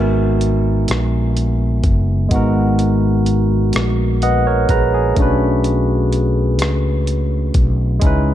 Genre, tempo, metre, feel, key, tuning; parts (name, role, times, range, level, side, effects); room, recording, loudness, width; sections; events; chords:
slow six-eight R&B; 42 BPM (dotted quarters); 6/8; straight; G# minor; A4 = 439 Hz
barky tine electric piano; accompaniment; 0.0-8.3 s; G#3 to A#5; -18 LUFS; right 1 dB; overdrive, phaser
fretless electric bass; bass; 0.0-8.3 s; F#1 to C#2; -17 LUFS; equal
dusty soul sampler-style drum kit; drums; 0.4-8.2 s; hi-hat, kick drum, rim click; -20 LUFS; equal; overdrive
digital ambience; dark, warm production; -14 LUFS; side -11 dB against mid
0.0-8.3 A section
tine electric piano fill 3.7-5.2
0.0 G#m9; 5.2 Bm9